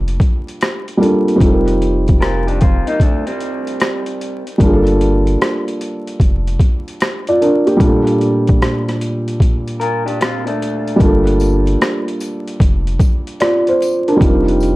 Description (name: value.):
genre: lo-fi hip hop.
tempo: 75 BPM.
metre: 4/4.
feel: swing 66% on 16ths.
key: G minor.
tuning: A4 = 440 Hz.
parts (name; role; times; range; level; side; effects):
felt-muted upright piano; accompaniment; 0.0-14.8 s; Bb2 to D5; -16 LUFS; equal; low-pass filter.
warm sub bass; bass; 0.0-14.8 s; F1 to G1; -17 LUFS; equal; none.
boom bap sampler-style drum kit; drums; 0.1-14.8 s; hi-hat, kick drum, rim click; -15 LUFS; equal; overdrive, vintage 12-bit sampler grit.
electric guitar through a small old amp; second line; 2.2-4.4, 9.8-11.0 s; G3 to Bb4; -22 LUFS; left 1 dB; low-pass filter, analog delay.
tambourine; percussion; 11.4-14.8 s; none; -37 LUFS; left 6 dB; none.
room: little or no reverb.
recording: dry, gritty hardware recording, vinyl crackle.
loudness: -12 LUFS.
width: side -19 dB against mid.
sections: 0.0-11.0 A section; 11.0-14.8 A section.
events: none.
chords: 0.0 Gm7; 1.4 F7sus4; 4.6 Gm7; 14.2 F7sus4.